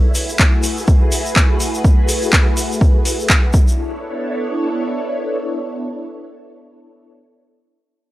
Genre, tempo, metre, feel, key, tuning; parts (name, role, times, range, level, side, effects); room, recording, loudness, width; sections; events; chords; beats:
deep house; 124 BPM; 4/4; swing 58% on 16ths; B minor; A4 = 442 Hz
soft string machine; sustained chords; 0.0-7.1 s; A3 to C#5; -22 LUFS; equal; phaser, ensemble chorus, sidechain pumping
deep house drum kit; drums; 0.1-3.4 s; handclaps, hi-hat; -18 LUFS; equal; overdrive
egg shaker; percussion; 0.1-3.8 s; -26 LUFS; left 1 dB
electronic kick drum; drums; 0.4-3.7 s; -13 LUFS; equal; overdrive
little or no reverb; dry, gritty hardware recording; -14 LUFS; side -16 dB against mid
0.0-3.8 A section; 3.8-7.7 B section
0.0 F#m11; 3.5 Bm11
0.39 0.88 1.36 | 1.84 2.33 2.81 3.30 | 3.78 4.26 4.75 5.23 | 5.71 6.20 6.68